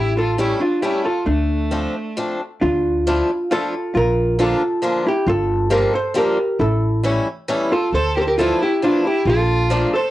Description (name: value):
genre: musette waltz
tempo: 136 BPM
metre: 3/4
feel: straight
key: D minor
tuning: A4 = 440 Hz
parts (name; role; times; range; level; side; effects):
- vintage hollow-body jazz guitar; melody; 0.0-10.1 s; A3 to C5; -18 LUFS; equal; none
- clear violin; second line; 0.0-2.4, 7.7-10.1 s; A3 to A4; -27 LUFS; right 2 dB; none
- upright bass; bass; 0.0-9.8 s; G1 to D2; -21 LUFS; equal; transformer saturation
- picked swing-style acoustic guitar; accompaniment; 0.4-9.9 s; D3 to F4; -22 LUFS; left 1 dB; none
room: moderate studio reverb, RT60 0.6 s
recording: home recording on cassette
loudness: -16 LUFS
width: side -15 dB against mid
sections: 0.0-2.6 A section; 2.6-10.1 A section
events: none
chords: 0.0 A7; 1.3 Dm7; 2.6 Dmadd9; 4.0 Bb; 5.3 Gm7; 6.6 A7; 7.9 Dmadd9; 9.3 Bbmaj7